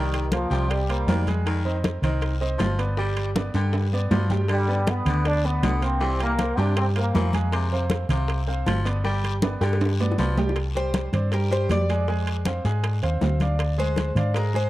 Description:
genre	latin, salsa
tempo	158 BPM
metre	4/4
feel	straight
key	C minor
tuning	A4 = 443 Hz
part	clear trombone section	melody	0.0-1.3, 4.5-7.3 s	Eb3 to D4	-28 LUFS	equal	analog delay
part	raspy baritone saxophone	second line	0.0-10.4 s	C3 to G3	-32 LUFS	left 2 dB	analog delay
part	bright baby grand piano	accompaniment	0.0-14.7 s	G3 to Ab5	-30 LUFS	right 3 dB	none
part	hollow-body short-scale fingered electric bass	bass	0.0-14.7 s	G1 to Ab2	-24 LUFS	equal	none
part	bongos	percussion	0.1-14.7 s	none	-35 LUFS	left 4 dB	none
part	congas	percussion	0.1-14.7 s	none	-29 LUFS	left 1 dB	none
part	timbales	percussion	0.1-14.5 s	none	-31 LUFS	right 5 dB	none
part	guiro	percussion	0.3-14.7 s	none	-42 LUFS	left 6 dB	none
part	Cuban tres	melody	10.8-14.7 s	Bb4 to D5	-29 LUFS	left 1 dB	analog delay
room	light reverb, studio reverb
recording	dark, warm production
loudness	-21 LUFS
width	side -16 dB against mid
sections	0.0-10.6 A section; 10.6-14.7 B section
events	drum fill 3.4-4.5, 9.4-10.6; Cuban tres solo 10.6-14.7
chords	0.0 Cm7; 1.5 Fm7; 3.0 G; 6.0 C7; 7.5 Fm; 9.0 G; 10.6 Csus2; 12.1 Fm; 13.6 Ddim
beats	0.32 0.70 1.08 | 1.46 1.84 2.22 2.60 | 2.98 3.36 3.74 4.12 | 4.50 4.88 5.25 5.63 | 6.01 6.39 6.77 7.15 | 7.53 7.91 8.29 8.67 | 9.05 9.43 9.81 10.19 | 10.56 10.94 11.32 11.70 | 12.08 12.46 12.84 13.22 | 13.60 13.98 14.36

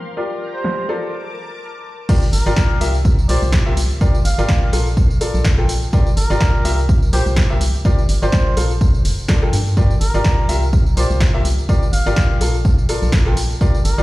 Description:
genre	piano house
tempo	125 BPM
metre	4/4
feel	swing 56% on 16ths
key	G dorian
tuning	A4 = 443 Hz
part	analog string pad	sustained chords	0.0-2.1 s	G4 to D6	-31 LUFS	left 1 dB	ensemble chorus, phaser, sidechain pumping
part	clear grand piano	riff	0.0-14.0 s	F4 to G5	-24 LUFS	left 1 dB	sidechain pumping, dub echo
part	punchy analog drum machine	drums	0.1-14.0 s	crash cymbal, hi-hat, snare drum, tambourine	-25 LUFS	equal	low-pass filter on perc, low-pass filter on snare, low-pass filter on cymbals, low-pass filter on hats, low-pass filter on room
part	trumpet with cup mute	melody	0.5-14.0 s	G4 to F5	-28 LUFS	equal	dub echo
part	electronic kick drum	drums	2.1-13.7 s	none	-16 LUFS	equal	none
part	organ-like FM bass	bass	2.3-14.0 s	F1 to G2	-18 LUFS	equal	sidechain pumping
room	little or no reverb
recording	played on a big sound system in a bare room, large studio reverb, low-pass filter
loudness	-14 LUFS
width	side -18 dB against mid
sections	0.0-2.1 A section; 2.1-14.0 B section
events	filter sweep 0.0-2.1; break 1.1-2.1; drop 2.1-14.0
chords	0.2 Gm7; 0.9 Bbmaj7; 2.1 Gm7; 3.0 C7sus4; 4.0 Gm7; 4.7 Bbmaj7; 5.9 Gm7; 6.9 C7sus4; 7.8 Gm7; 8.6 Bbmaj7(no3); 9.8 Gm7; 10.7 C7sus4; 11.7 Gm7; 12.4 Bbmaj7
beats	| 0.17 0.65 1.13 1.61 | 2.09 2.57 3.05 3.53 | 4.01 4.49 4.97 5.45 | 5.93 6.41 6.89 7.37 | 7.85 8.33 8.81 9.29 | 9.77 10.25 10.73 11.21 | 11.69 12.17 12.65 13.13 | 13.61

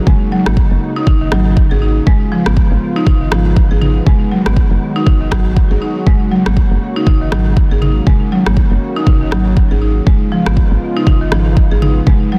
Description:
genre	afro house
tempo	120 BPM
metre	4/4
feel	swing 58% on 16ths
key	unclear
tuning	A4 = 441 Hz
part	warm analog pad	sustained chords	0.0-12.4 s	C#3 to F#4	-24 LUFS	equal	chorus, sidechain pumping
part	buzzing marimba with medium hard mallets	arpeggios	0.1-12.4 s	D#3 to G#4	-20 LUFS	equal	sidechain pumping, digital delay
part	woody FM bass	bass	0.1-12.2 s	F#1 to G#1	-18 LUFS	equal	sidechain pumping
part	afro-pop drum kit	drums	0.1-12.2 s	rim click, toms	-24 LUFS	equal	soft clipping on snare
part	electronic kick drum	drums	0.1-12.2 s	none	-14 LUFS	equal	none
room	little or no reverb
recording	dense, heavily limited modern master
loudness	-13 LUFS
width	mono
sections	0.0-12.4 A section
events	none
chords	0.0 F#add9; 2.1 C#7/G#; 4.1 G#m7; 6.1 F#add9; 10.1 C#7/G#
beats	| 0.07 0.57 1.07 1.57 | 2.07 2.57 3.07 3.57 | 4.07 4.57 5.07 5.57 | 6.07 6.57 7.07 7.57 | 8.07 8.57 9.07 9.57 | 10.07 10.57 11.07 11.57 | 12.07

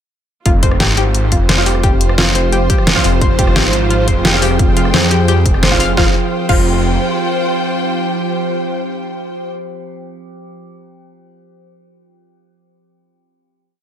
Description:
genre	dark technical drum and bass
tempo	174 BPM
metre	4/4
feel	straight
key	F minor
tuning	A4 = 440 Hz
part	metallic inharmonic drone	sustained chords	1.2-9.5 s	F3 to Ab4	-20 LUFS	right 1 dB	chorus, built-in reverb, phaser, sidechain pumping
part	analog pluck	arpeggios	0.5-6.6 s	F4 to F5	-21 LUFS	left 4 dB	chorus, sidechain pumping, dub echo
part	wide detuned saw bass	bass	0.5-7.0 s	F1 to F2	-16 LUFS	equal	chorus, overdrive
part	dubstep drum kit	drums	0.5-6.6 s	crash cymbal, hi-hat, rim click, snare drum	-16 LUFS	equal	none
part	electronic kick drum	drums	0.5-6.6 s	none	-15 LUFS	equal	none
part	warm studio string section	texture	0.5-9.5 s	F4 to G5	-21 LUFS	right 2 dB	sidechain pumping
part	orchestra-hit-like synth stab	stabs	1.6-10.0 s	F4 to F5	-22 LUFS	right 1 dB	built-in reverb, dub echo
room	light reverb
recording	none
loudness	-11 LUFS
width	side -9 dB against mid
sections	0.5-6.0 drop; 6.0-8.7 final chord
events	drop 0.5-6.0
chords	0.5 Fmadd9; 6.0 Fsus2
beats	| 0.46 0.80 1.15 1.49 | 1.83 2.18 2.52 2.87 | 3.21 3.56 3.90 4.25 | 4.59 4.94 5.28 5.63 | 5.97 6.32 6.66 7.01 | 7.35 7.70 8.04 8.39

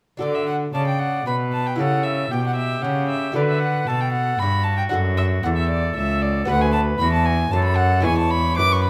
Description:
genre	classical, baroque-style sonata movement with continuo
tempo	115 BPM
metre	3/4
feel	straight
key	D major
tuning	A4 = 441 Hz
part	warm violin	melody	0.2-8.9 s	D5 to D6	-26 LUFS	equal	none
part	lute	accompaniment	0.2-8.9 s	D2 to B4	-30 LUFS	equal	none
part	rich cello	bass	0.2-8.9 s	C#2 to D3	-24 LUFS	equal	none
part	clear oboe	second line	0.7-8.9 s	F#4 to D5	-30 LUFS	equal	none
room	moderate recital hall reverb, RT60 1.3 s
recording	close, detailed microphones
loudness	-21 LUFS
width	mono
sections	0.2-8.9 A section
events	none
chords	0.2 D; 1.8 A7; 3.4 D; 6.5 Bm7/D; 8.1 E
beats	| 0.20 0.74 1.26 | 1.79 2.31 2.84 | 3.36 3.88 4.40 | 4.93 5.45 5.97 | 6.50 7.01 7.53 | 8.06 8.59

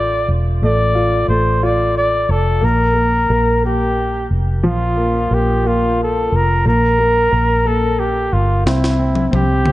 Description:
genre	six-eight pop ballad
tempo	60 BPM (dotted quarters)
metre	6/8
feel	straight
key	F major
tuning	A4 = 440 Hz
part	warm flugelhorn	melody	0.0-9.7 s	E4 to D5	-18 LUFS	equal	tape echo
part	clear upright piano	accompaniment	0.0-9.7 s	F3 to F4	-20 LUFS	left 1 dB	none
part	vintage muted fingered electric bass	bass	0.0-9.7 s	E1 to C2	-17 LUFS	equal	none
part	jungle sampler-style drum kit	drums	8.7-9.7 s	snare drum, toms	-20 LUFS	left 2 dB	overdrive
room	light reverb, small room ambience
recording	dark, warm production, nothing above 10.6 kHz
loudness	-13 LUFS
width	side -16 dB against mid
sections	0.0-9.7 A section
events	drum fill 8.7-9.7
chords	0.0 F6; 2.6 Bb5; 6.7 Gm/Bb; 8.7 C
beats	| 0.62 1.63 | 2.63 3.64 | 4.64 5.65 | 6.65 7.65 | 8.65 9.66

